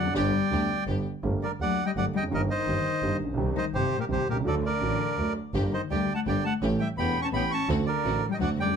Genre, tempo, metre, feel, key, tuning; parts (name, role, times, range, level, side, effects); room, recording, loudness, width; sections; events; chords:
tango; 167 BPM; 3/4; rubato; G harmonic minor; A4 = 440 Hz
bandoneon; melody; 0.0-8.8 s; G4 to C#6; -29 LUFS; right 3 dB; plate reverb
dark cello; second line; 0.0-8.8 s; Bb2 to C#4; -31 LUFS; left 9 dB
warm upright piano; accompaniment; 0.0-8.8 s; E1 to G4; -31 LUFS; right 3 dB
clear double bass; bass; 0.0-8.8 s; E1 to D2; -31 LUFS; right 2 dB
rich studio string section; stabs; 0.1-1.0, 5.5-8.6 s; A3 to G4; -39 LUFS; left 1 dB
moderate club reverb, RT60 0.5 s; close, detailed microphones; -25 LUFS; side -7 dB against mid
0.0-1.2 A section; 1.2-8.8 B section
0.2 G; 1.2 Gmadd9; 2.3 Eb/G; 3.4 Cm; 4.5 D; 5.5 Gm; 6.6 A7; 7.7 D7